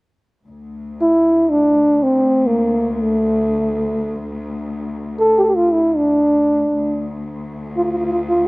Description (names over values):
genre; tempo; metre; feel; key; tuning
turkish; free time; none; none; D makam nihavent; A4 = 440 Hz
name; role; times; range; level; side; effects
rich symphonic cello section; drone; 0.5-8.5 s; D2; -27 LUFS; left 2 dB; none
mellow trombone; melody; 1.0-8.5 s; A3 to A4; -14 LUFS; equal; slapback echo
room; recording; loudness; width
little or no reverb; recorded outdoors, with no room sound; -14 LUFS; side -26 dB against mid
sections
0.5-8.5 A section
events
none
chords
none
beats
free time